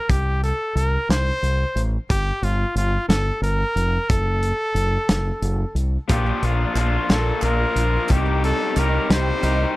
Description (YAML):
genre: indie rock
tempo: 60 BPM (dotted quarters)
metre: 6/8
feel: straight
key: G minor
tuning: A4 = 440 Hz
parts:
  - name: bright trumpet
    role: melody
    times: 0.0-9.8 s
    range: F4 to C5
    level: -24 LUFS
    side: equal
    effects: slapback echo
  - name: growling fingered electric bass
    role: bass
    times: 0.1-9.6 s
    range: F1 to C2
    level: -21 LUFS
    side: equal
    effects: overdrive
  - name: loose indie drum kit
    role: drums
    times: 0.1-9.6 s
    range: hi-hat, kick drum, snare drum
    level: -21 LUFS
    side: equal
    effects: none
  - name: raw garage guitar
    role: riff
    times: 6.1-9.8 s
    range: Bb2 to G4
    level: -25 LUFS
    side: left 6 dB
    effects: overdrive
  - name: raw garage guitar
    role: riff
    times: 6.1-9.8 s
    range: Bb2 to Bb4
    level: -30 LUFS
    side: right 6 dB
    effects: overdrive, ensemble chorus
  - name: group handclap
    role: percussion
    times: 6.1-9.6 s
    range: none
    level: -36 LUFS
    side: right 5 dB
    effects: none
room: small room ambience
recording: dry, close 1970s-style studio recording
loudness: -18 LUFS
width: side -18 dB against mid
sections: 0.0-9.8 A section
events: none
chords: 0.1 N.C.; 2.1 Gm; 4.1 F#m; 6.1 Bb; 8.1 Cm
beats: | 0.09 1.09 | 2.10 3.10 | 4.10 5.10 | 6.10 7.11 | 8.11 9.11